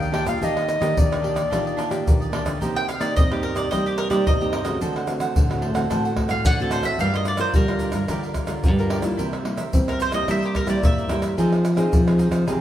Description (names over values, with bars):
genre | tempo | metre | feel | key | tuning
samba and choro | 110 BPM | 4/4 | straight | C minor | A4 = 439 Hz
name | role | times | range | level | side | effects
mellow clarinet | second line | 0.0-2.4 s | D5 to G5 | -25 LUFS | left 2 dB | none
cavaquinho | accompaniment | 0.0-12.6 s | D4 to F#5 | -32 LUFS | right 4 dB | none
nylon-string guitar | accompaniment | 0.0-12.6 s | G2 to Bb4 | -27 LUFS | equal | none
nylon-string guitar | bass | 0.0-12.6 s | G2 to C4 | -24 LUFS | equal | none
tube shaker, pandeiro, tamborim and surdo | percussion | 0.0-12.6 s | none | -24 LUFS | equal | none
mandolin | melody | 2.8-11.3 s | G4 to G5 | -26 LUFS | right 1 dB | none
room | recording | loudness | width
wet stone room reverb, RT60 1.4 s | band playing live in one room | -19 LUFS | side -12 dB against mid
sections
0.0-2.6 A section; 2.6-12.6 B section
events
clarinet solo 0.0-2.6; mandolin solo 2.6-12.6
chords
0.0 Ebmaj7; 2.6 Cm7; 4.8 D7; 7.0 Gm7; 9.2 C7; 11.4 Fm7